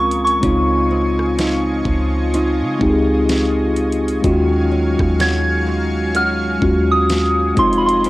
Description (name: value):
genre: contemporary R&B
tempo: 63 BPM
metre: 4/4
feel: swing 58% on 16ths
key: unclear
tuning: A4 = 442 Hz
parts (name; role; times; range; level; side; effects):
- soft synth bell; melody; 0.0-8.1 s; Cb6 to Ab6; -19 LUFS; right 1 dB; chorus, phaser, cassette tape
- mellow tine electric piano; accompaniment; 0.0-8.1 s; Ab3 to Ab4; -18 LUFS; left 1 dB; medium stereo tremolo, cassette tape
- lush unison pad; sustained chords; 0.0-8.1 s; Gb3 to Db6; -26 LUFS; right 1 dB; chorus, cassette tape
- nylon-string guitar; arpeggios; 0.0-8.1 s; F2 to Gb4; -26 LUFS; right 2 dB; cassette tape, tape echo
- soft 808-style bass; bass; 0.0-8.1 s; F1 to Db3; -21 LUFS; equal; none
- smooth R&B drum kit; drums; 0.1-8.1 s; hi-hat, kick drum, rim click, snare drum; -22 LUFS; equal; cassette tape
room: light reverb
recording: home recording on cassette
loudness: -14 LUFS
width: side -18 dB against mid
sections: 0.0-8.1 A section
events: none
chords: 0.4 Dbmaj9; 4.2 Ebm11; 7.6 Fm7